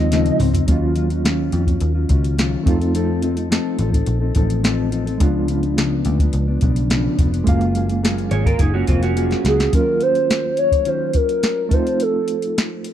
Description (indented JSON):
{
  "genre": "indie pop, bedroom pop",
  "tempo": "106 BPM",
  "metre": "4/4",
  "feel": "straight",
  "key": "Eb dorian",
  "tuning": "A4 = 440 Hz",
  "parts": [
    { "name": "hollow clarinet-like synth lead", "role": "melody", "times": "0.0-0.4, 9.5-12.6 s", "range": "Ab4 to Eb5", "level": "-20 LUFS", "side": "equal", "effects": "lush chorus, tape echo" },
    { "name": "mellow electric guitar", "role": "accompaniment", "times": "0.0-12.9 s", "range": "Db3 to A4", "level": "-23 LUFS", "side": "left 5 dB", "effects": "wide subtle chorus, warbly pitch drift" },
    { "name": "reed electric piano", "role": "accompaniment", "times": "0.0-12.9 s", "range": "Eb2 to F5", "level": "-26 LUFS", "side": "right 5 dB", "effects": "fast tremolo, cassette tape" },
    { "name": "vintage muted picked electric bass", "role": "bass", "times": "0.0-9.7 s", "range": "F1 to F2", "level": "-20 LUFS", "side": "equal", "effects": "none" },
    { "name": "soft vintage rhythm box", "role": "drums", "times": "0.1-12.9 s", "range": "hi-hat, kick drum, snare drum, toms", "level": "-20 LUFS", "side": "equal", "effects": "none" },
    { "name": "electric guitar through a small old amp", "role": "second line", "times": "8.3-9.7 s", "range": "C4 to Db5", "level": "-24 LUFS", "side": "right 7 dB", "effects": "lush chorus, tape echo" }
  ],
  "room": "little or no reverb",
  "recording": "dry, close 1970s-style studio recording",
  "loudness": "-16 LUFS",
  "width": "side -10 dB against mid",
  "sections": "0.7-9.7 A section; 9.7-12.9 B section",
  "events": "drum fill 0.1-0.7, 9.2-9.7",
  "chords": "0.0 Dbmaj9; 0.7 Ebm9; 2.7 F7; 5.2 Db7b9; 7.5 Gbmaj9; 9.7 Ebm9; 11.7 F7",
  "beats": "0.12 | 0.68 1.25 1.81 2.38 | 2.94 3.51 4.08 4.64 | 5.21 5.77 6.34 6.90 | 7.47 8.03 8.60 9.16 | 9.73 10.30 10.86 11.43 | 12.00 12.56"
}